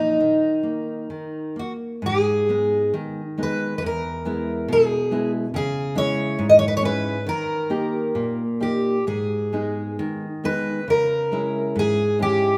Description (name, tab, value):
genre	fado-style ballad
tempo	64-72 BPM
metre	2/4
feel	rubato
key	G# harmonic minor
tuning	A4 = 440 Hz
part	fingerpicked twelve-string acoustic guitar	melody	0.0-12.6 s	Eb4 to D#5	-23 LUFS	equal	none
part	nylon-string guitar	accompaniment	0.0-12.6 s	E2 to G4	-28 LUFS	equal	none
room	moderate recital hall reverb, RT60 1.5 s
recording	none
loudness	-23 LUFS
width	mono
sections	0.0-2.0 A section; 2.0-12.6 B section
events	none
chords	0.2 Eb5; 2.0 G#m; 3.8 E; 5.5 C#m; 7.3 D#; 9.1 G#m; 10.9 C#m